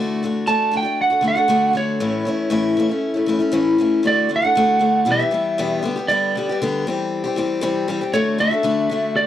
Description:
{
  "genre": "rock",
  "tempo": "118 BPM",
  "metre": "4/4",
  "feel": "straight",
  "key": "D major",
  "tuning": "A4 = 440 Hz",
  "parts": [
    { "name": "picked steel-string acoustic guitar", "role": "accompaniment", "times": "0.0-9.3 s", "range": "E2 to G4", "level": "-19 LUFS", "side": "left 3 dB", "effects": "none" },
    { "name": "lightly driven lead guitar", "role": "melody", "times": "0.5-9.3 s", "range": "C#5 to A5", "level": "-18 LUFS", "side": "right 2 dB", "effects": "none" }
  ],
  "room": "little or no reverb",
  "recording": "dry, close 1970s-style studio recording",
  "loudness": "-17 LUFS",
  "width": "side -11 dB against mid",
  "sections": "0.0-4.1 A section; 4.1-9.3 B section",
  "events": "none",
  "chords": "0.0 D; 2.0 A; 4.1 D; 5.1 Em; 5.8 G/D; 6.9 C; 8.1 D"
}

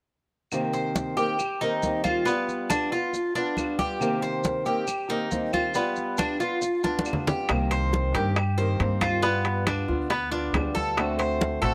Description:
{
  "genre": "latin, Cuban son and guajira",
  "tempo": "138 BPM",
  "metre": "4/4",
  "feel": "straight",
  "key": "C harmonic minor",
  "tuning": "A4 = 440 Hz",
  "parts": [
    { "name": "fingerpicked old ladder-braced acoustic guitar", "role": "accompaniment", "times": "0.5-11.7 s", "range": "C3 to G4", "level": "-31 LUFS", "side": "equal", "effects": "none" },
    { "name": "claves", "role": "percussion", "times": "0.5-11.2 s", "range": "none", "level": "-41 LUFS", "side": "equal", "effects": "none" },
    { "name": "congas", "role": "percussion", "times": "0.5-11.7 s", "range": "none", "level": "-34 LUFS", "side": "equal", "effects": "none" },
    { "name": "maracas", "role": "percussion", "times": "0.5-7.5 s", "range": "none", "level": "-41 LUFS", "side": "equal", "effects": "none" },
    { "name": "Cuban tres", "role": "arpeggios", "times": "0.7-11.7 s", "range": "B3 to C5", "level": "-30 LUFS", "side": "equal", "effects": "none" },
    { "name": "upright bass", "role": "bass", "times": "7.5-11.7 s", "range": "A1 to G2", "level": "-30 LUFS", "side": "equal", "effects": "none" },
    { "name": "bongos", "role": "percussion", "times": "7.5-11.7 s", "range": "none", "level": "-35 LUFS", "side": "equal", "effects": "none" },
    { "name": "timbales", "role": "percussion", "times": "7.5-11.7 s", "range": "none", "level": "-32 LUFS", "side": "equal", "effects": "none" }
  ],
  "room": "light reverb",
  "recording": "none",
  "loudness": "-26 LUFS",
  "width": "mono",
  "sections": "0.5-7.5 A section; 7.5-11.7 B section",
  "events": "drum fill 6.8-7.5",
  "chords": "0.5 Cm7; 2.3 G7; 4.0 Cm7; 5.7 G7; 7.5 Cm7; 9.2 G7; 11.0 D7"
}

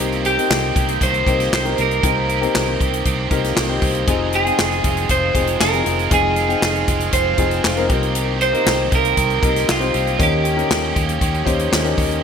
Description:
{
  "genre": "piano-driven pop",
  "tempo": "118 BPM",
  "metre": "4/4",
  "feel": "straight",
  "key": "F minor",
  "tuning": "A4 = 438 Hz",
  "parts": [
    { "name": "dark concert grand piano", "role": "accompaniment", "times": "0.0-12.2 s", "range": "C3 to G5", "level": "-23 LUFS", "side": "left 6 dB", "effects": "none" },
    { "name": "bright tonewheel organ", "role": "sustained chords", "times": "0.0-12.2 s", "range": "Ab4 to F6", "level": "-31 LUFS", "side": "equal", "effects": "wide subtle chorus" },
    { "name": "crunchy overdriven guitar", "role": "riff", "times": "0.0-12.2 s", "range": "F2 to G4", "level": "-25 LUFS", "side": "right 8 dB", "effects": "analog chorus" },
    { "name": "vintage muted fingered electric bass", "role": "bass", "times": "0.0-12.2 s", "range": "F1 to Eb2", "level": "-24 LUFS", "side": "equal", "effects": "none" },
    { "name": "natural country drum kit", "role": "drums", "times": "0.1-12.2 s", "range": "handclaps, hi-hat, kick drum, snare drum", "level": "-21 LUFS", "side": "equal", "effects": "none" },
    { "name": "electric guitar at the edge of break-up", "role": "melody", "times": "0.3-11.7 s", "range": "F4 to C5", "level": "-20 LUFS", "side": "right 2 dB", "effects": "wide subtle chorus" }
  ],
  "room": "moderate lush hall reverb, RT60 2.4 s",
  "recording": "bright 1980s-style digital production",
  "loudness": "-15 LUFS",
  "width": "side -7 dB against mid",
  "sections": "0.0-12.2 A section",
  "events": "none",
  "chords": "0.0 Cm7; 4.1 Fm7; 7.9 Cm7; 10.2 Eb7"
}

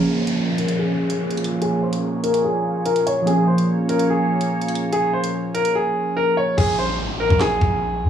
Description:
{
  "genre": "hip hop, drill",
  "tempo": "145 BPM",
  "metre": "4/4",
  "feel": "half-time",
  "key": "Bb minor",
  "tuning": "A4 = 438 Hz",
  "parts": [
    { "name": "clear concert grand piano", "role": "melody", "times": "0.0-8.1 s", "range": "Ab4 to Db5", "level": "-21 LUFS", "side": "left 1 dB", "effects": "low-pass filter, analog delay" },
    { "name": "warbly lo-fi synth keys", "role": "accompaniment", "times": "0.0-6.6 s", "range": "F3 to Ab4", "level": "-22 LUFS", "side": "right 1 dB", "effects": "chorus, low-pass filter" },
    { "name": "sweeping resonant pad", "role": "sustained chords", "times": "0.0-6.5 s", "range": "Bb2 to Db5", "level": "-28 LUFS", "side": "equal", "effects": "chorus, phaser, low-pass filter" },
    { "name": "downlifter", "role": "sound effects", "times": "0.0-3.3, 6.6-8.1 s", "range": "none", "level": "-29 LUFS", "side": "right 2 dB", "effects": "none" },
    { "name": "drill drum kit", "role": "drums", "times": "0.3-7.7 s", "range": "crash cymbal, handclaps, hi-hat, kick drum, snare drum", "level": "-25 LUFS", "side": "equal", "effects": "none" },
    { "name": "long sustained 808-style bass", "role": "bass", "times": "6.6-8.1 s", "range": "Ab1 to Bb2", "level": "-23 LUFS", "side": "equal", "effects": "none" }
  ],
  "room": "little or no reverb",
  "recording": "dry, gritty hardware recording, cassette tape, small room reverb",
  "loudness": "-18 LUFS",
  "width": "side -9 dB against mid",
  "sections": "0.0-6.6 A section; 6.6-8.1 B section",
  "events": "filter sweep 0.0-6.6; hi-hats muted 6.6-8.1",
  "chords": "0.0 Bbm7; 6.6 Absus2"
}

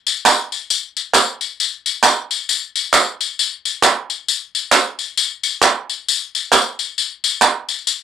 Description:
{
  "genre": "gospel",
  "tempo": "134 BPM",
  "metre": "4/4",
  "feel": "swing 59% on 8ths",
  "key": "none",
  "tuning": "none",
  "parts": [
    { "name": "tambourine and handclaps", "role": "percussion", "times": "0.1-8.0 s", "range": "none", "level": "-14 LUFS", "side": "equal", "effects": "none" }
  ],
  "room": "light reverb",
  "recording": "dry, close 1970s-style studio recording",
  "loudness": "-15 LUFS",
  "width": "side -8 dB against mid",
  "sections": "0.0-8.0 A section",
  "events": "none",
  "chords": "none"
}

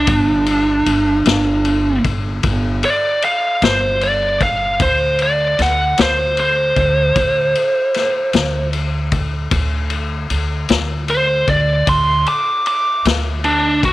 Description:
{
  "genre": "slow blues",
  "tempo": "51 BPM (dotted quarters)",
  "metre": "12/8",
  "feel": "straight",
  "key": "unclear",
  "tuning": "A4 = 440 Hz",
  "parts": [
    { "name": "biting lead guitar", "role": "melody", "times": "0.0-13.9 s", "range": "D4 to D6", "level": "-15 LUFS", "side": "right 1 dB", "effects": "overdrive" },
    { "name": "upright bass", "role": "bass", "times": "0.0-13.9 s", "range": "G1 to D2", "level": "-20 LUFS", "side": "equal", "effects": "none" },
    { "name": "vintage drum kit", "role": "drums", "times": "0.1-13.9 s", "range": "kick drum, ride cymbal, snare drum", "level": "-20 LUFS", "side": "left 4 dB", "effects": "none" }
  ],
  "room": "light reverb, small room ambience",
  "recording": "1960s-style stereo",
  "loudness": "-14 LUFS",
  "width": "side -16 dB against mid",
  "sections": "0.0-13.9 A section",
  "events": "lead electric guitar solo 0.0-13.9",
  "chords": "0.1 G5; 4.8 D5"
}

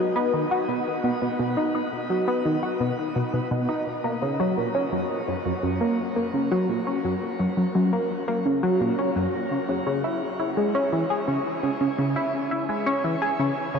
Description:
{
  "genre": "ambient",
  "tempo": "85 BPM",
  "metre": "4/4",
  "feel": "straight",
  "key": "unclear",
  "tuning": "A4 = 440 Hz",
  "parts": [
    { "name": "tight sequenced synth", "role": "solo", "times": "0.0-13.8 s", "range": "F#2 to G#4", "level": "-22 LUFS", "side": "equal", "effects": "chorus, phaser, ping-pong delay" }
  ],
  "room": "wet shimmer reverb, RT60 7.6 s",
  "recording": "worn, warbling old tape, cassette tape, warbly pitch drift",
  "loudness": "-22 LUFS",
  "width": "side -6 dB against mid",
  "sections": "0.0-13.8 A section",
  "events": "none",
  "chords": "none"
}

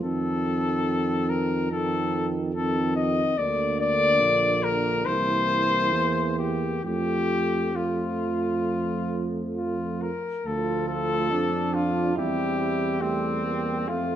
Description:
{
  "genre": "classical, brass quintet",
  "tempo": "65-72 BPM",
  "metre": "4/4",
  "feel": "rubato",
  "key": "F major, D minor from 10.5 s",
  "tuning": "A4 = 440 Hz",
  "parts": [
    { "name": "clear trumpet", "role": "melody", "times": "0.0-14.2 s", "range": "C4 to Eb5", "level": "-26 LUFS", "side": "left 4 dB", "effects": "none" },
    { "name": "clear trombone", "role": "accompaniment", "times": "0.0-14.2 s", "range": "D3 to A3", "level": "-32 LUFS", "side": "right 5 dB", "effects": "none" },
    { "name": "dark French horn", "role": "accompaniment", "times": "0.0-14.2 s", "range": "A3 to D4", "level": "-30 LUFS", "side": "left 2 dB", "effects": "none" },
    { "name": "mellow tuba", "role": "bass", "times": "0.0-14.2 s", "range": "Bb1 to F2", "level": "-30 LUFS", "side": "right 4 dB", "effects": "none" },
    { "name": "warm flugelhorn", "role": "second line", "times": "10.5-14.2 s", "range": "D4 to G4", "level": "-32 LUFS", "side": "right 8 dB", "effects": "none" }
  ],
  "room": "moderate recital hall reverb, RT60 1.4 s",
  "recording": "none",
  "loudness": "-23 LUFS",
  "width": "side -10 dB against mid",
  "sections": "0.0-10.5 A section; 10.5-14.2 B section",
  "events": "none",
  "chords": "0.0 F7; 3.4 Bb/D; 5.1 C7; 6.8 F; 10.5 Dm; 12.2 C/E"
}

